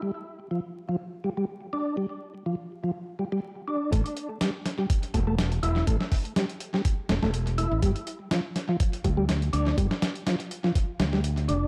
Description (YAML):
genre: breakbeat, breaks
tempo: 123 BPM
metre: 4/4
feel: swing 54% on 16ths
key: unclear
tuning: A4 = 440 Hz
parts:
  - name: percussive tonewheel organ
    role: riff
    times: 0.0-11.7 s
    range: F3 to E4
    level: -32 LUFS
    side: equal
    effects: chorus vibrato, fast rotary speaker, tape echo
  - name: modern bright fingered electric bass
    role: bass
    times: 3.9-11.7 s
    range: E1 to D2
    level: -29 LUFS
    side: equal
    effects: none
  - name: dusty soul sampler-style drum kit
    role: drums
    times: 3.9-11.6 s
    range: hi-hat, kick drum, snare drum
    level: -30 LUFS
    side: equal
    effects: tape echo
room: light reverb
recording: echo-heavy mix, vinyl crackle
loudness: -28 LUFS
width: mono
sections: 0.0-3.9 A section; 3.9-11.7 B section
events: filter sweep on tonewheel organ 0.0-3.9; drop 3.9-11.7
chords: 0.0 G5; 3.9 A5; 7.8 G5